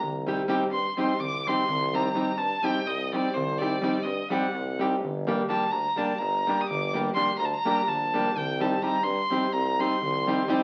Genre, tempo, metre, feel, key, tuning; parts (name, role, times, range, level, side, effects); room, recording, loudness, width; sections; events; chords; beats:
balkan folk, Balkan wedding band; 252 BPM (eighths); 7/8; straight; C dorian sharp4; A4 = 441 Hz
clear tuba; bass; 0.0-10.4 s; G1 to G2; -35 LUFS; equal
darbuka; percussion; 0.0-10.6 s; -44 LUFS; equal
nylon-string guitar; accompaniment; 0.3-10.6 s; G3 to G4; -30 LUFS; equal
clear fiddle; melody; 0.7-10.5 s; C5 to Eb6; -30 LUFS; equal
wet large studio reverb, RT60 0.8 s; very old 78 rpm record, vinyl crackle; -27 LUFS; mono
0.0-10.6 A section
fiddle solo 0.0-10.6
0.0 Cm; 5.0 Gm; 8.4 Cm
| 0.03 0.27 0.50 0.74 0.98 1.22 1.46 | 1.69 1.93 2.17 2.41 2.64 2.88 3.12 | 3.36 3.60 3.83 4.07 4.31 4.55 4.79 | 5.02 5.26 5.50 5.74 5.98 6.21 6.45 | 6.69 6.93 7.17 7.41 7.64 7.88 8.12 | 8.36 8.60 8.83 9.07 9.31 9.55 9.79 | 10.03 10.26 10.50